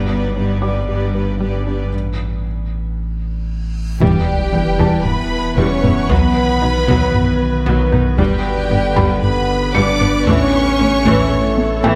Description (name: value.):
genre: cinematic, hybrid orchestral and electronic film score.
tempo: 115 BPM.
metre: 4/4.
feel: straight.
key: E dorian.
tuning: A4 = 440 Hz.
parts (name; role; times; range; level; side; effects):
rich studio violin section; second line; 0.0-12.0 s; G4 to D5; -29 LUFS; equal; none.
rich symphonic viola section; accompaniment; 0.0-12.0 s; E3 to B4; -26 LUFS; equal; none.
metallic inharmonic drone; sustained chords; 0.0-12.0 s; D3 to C#5; -28 LUFS; equal; chorus, built-in reverb.
punchy sub bass; bass; 0.0-12.0 s; E1 to B1; -25 LUFS; equal; none.
rich symphonic cello section; bass; 0.0-11.9 s; E2 to B2; -24 LUFS; equal; none.
analog pluck; arpeggios; 0.1-12.0 s; E3 to G4; -27 LUFS; equal; none.
felt-muted upright piano; texture; 0.6-12.0 s; D5 to C#7; -30 LUFS; equal; tape echo.
reverse cymbal and sub drop; sound effects; 4.0-6.1 s; none; -26 LUFS; equal; none.
warm symphonic violin section; melody; 4.0-12.0 s; G5 to D6; -27 LUFS; equal; none.
dark trombone section; sustained chords; 4.0-12.0 s; D3 to B3; -28 LUFS; equal; none.
warm French horn section; sustained chords; 4.0-12.0 s; G3 to D4; -23 LUFS; equal; none.
rich symphonic double bass section; bass; 4.0-11.9 s; E1 to B1; -24 LUFS; equal; none.
taiko ensemble; drums; 4.0-12.0 s; none; -23 LUFS; equal; none.
room: moderate scoring stage reverb, RT60 1.9 s.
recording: none.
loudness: -16 LUFS.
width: mono.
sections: 0.0-4.0 A section; 4.0-12.0 B section.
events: break 1.9-4.0; reverse cymbal 3.9; impact 4.0-6.1; drum fill 11.6-12.0.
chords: 0.0 G; 1.9 N.C.; 4.0 Em; 6.1 B; 8.2 G; 10.3 A.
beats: 0.36 0.89 1.41 | 1.93 2.45 2.97 3.49 | 4.01 4.54 5.06 5.58 | 6.10 6.62 7.14 7.67 | 8.19 8.71 9.23 9.75 | 10.28 10.80 11.32 11.84.